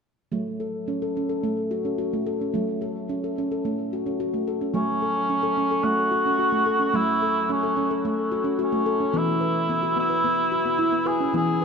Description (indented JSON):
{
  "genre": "world meditative, meditative tuned percussion",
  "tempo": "109 BPM",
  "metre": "4/4",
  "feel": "straight",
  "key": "F# minor pentatonic",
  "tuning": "A4 = 441 Hz",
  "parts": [
    { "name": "handpan", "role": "arpeggios", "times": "0.3-11.6 s", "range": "E3 to B4", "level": "-24 LUFS", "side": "left 1 dB", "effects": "diffuse ambient delay" },
    { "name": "mellow cor anglais", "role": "melody", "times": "4.8-11.6 s", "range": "C#4 to G#4", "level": "-23 LUFS", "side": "right 1 dB", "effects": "diffuse ambient delay" }
  ],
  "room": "wet echo chamber reverb, RT60 2.1 s",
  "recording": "dark, warm production",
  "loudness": "-22 LUFS",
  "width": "side -6 dB against mid",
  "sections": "0.3-4.7 A section; 4.7-11.6 B section",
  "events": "none",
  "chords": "0.3 F#m; 9.1 E",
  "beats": "| 0.33 0.89 1.44 1.99 | 2.54 3.09 3.65 4.20 | 4.75 5.30 5.85 6.40 | 6.95 7.50 8.05 8.60 | 9.15 9.70 10.24 10.79 | 11.34"
}